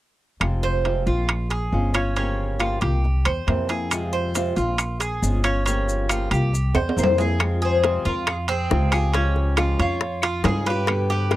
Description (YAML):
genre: latin, Cuban son and guajira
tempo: 138 BPM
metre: 4/4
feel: straight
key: F harmonic minor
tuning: A4 = 440 Hz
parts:
  - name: flamenco guitar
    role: accompaniment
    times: 0.4-11.4 s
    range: B2 to G4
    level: -28 LUFS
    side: left 3 dB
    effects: none
  - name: upright bass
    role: bass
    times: 0.4-11.4 s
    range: F1 to G2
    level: -23 LUFS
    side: equal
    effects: none
  - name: claves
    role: percussion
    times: 0.4-11.1 s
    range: none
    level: -29 LUFS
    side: left 5 dB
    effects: none
  - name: timbales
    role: percussion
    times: 0.4-11.4 s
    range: none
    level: -25 LUFS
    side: right 4 dB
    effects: none
  - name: Cuban tres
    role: arpeggios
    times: 0.6-11.4 s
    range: C4 to Db5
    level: -26 LUFS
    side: right 4 dB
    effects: none
  - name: maracas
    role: percussion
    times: 3.9-7.4 s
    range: none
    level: -32 LUFS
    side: left 3 dB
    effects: none
  - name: Cuban tres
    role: melody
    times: 7.0-11.4 s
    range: F4 to C5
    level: -26 LUFS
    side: left 4 dB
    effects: none
  - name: bongos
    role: percussion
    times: 7.4-11.4 s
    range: none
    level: -25 LUFS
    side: left 7 dB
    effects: none
room: little or no reverb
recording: none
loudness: -20 LUFS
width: side -15 dB against mid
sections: 0.4-7.4 A section; 7.4-11.4 B section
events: drum fill 6.8-7.4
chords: 0.4 Fm; 1.3 Bbm7; 2.2 Gm7b5; 3.0 C7; 3.9 Fm; 4.8 Bbm7; 5.7 Gm7b5; 6.5 C7; 7.4 Fm; 9.1 Db